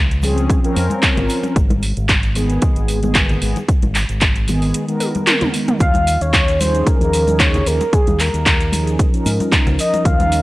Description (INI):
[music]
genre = nu-disco, nu disco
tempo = 113 BPM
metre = 4/4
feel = swing 53% on 16ths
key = unclear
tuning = A4 = 440 Hz
[part]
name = fingered electric bass with an envelope filter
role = bass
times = 0.0-10.4 s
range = Ab1 to Ab2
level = -19 LUFS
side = equal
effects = none
[part]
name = house drum kit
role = drums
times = 0.1-10.4 s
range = handclaps, hi-hat, shaker, toms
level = -19 LUFS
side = equal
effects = none
[part]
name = tube shaker and congas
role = percussion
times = 0.1-10.4 s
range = none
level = -26 LUFS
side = left 2 dB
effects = none
[part]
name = mellow synth brass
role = accompaniment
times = 0.2-10.4 s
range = Eb3 to Bb4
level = -21 LUFS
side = equal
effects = chorus, sidechain pumping
[part]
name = electronic kick drum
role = drums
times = 0.5-10.2 s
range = none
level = -16 LUFS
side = equal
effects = none
[part]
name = soft octave-layered synth lead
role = melody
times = 5.8-10.4 s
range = Ab4 to F5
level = -19 LUFS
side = equal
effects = chorus
[sound]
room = digital ambience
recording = dry, gritty hardware recording, transformer saturation, cassette tape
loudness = -14 LUFS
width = side -18 dB against mid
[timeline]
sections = 0.0-10.4 A section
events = drum fill 5.0-5.8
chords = 0.0 Dbmaj7; 1.6 Abm; 5.8 Eb9sus4